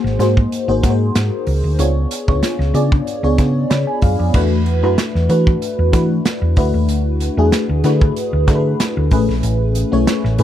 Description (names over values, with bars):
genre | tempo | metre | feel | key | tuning
polished 1980s jazz-funk pop | 94 BPM | 4/4 | swing 54% on 16ths | unclear | A4 = 442 Hz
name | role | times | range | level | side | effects
FM electric piano with soft pad layer | accompaniment | 0.0-10.4 s | A3 to B5 | -18 LUFS | left 2 dB | phaser, lush chorus
hollow-body short-scale fingered electric bass | bass | 0.0-10.4 s | G#1 to E3 | -16 LUFS | equal | none
modern studio drum kit | drums | 0.1-10.4 s | crash cymbal, hi-hat, kick drum, snare drum | -18 LUFS | right 1 dB | none
room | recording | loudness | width
little or no reverb | none | -14 LUFS | side -11 dB against mid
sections
0.0-4.3 A section; 4.3-10.4 B section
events
none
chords
0.0 G#9; 1.8 C#7b9; 4.3 E7sus4; 6.6 D6; 9.1 Amaj7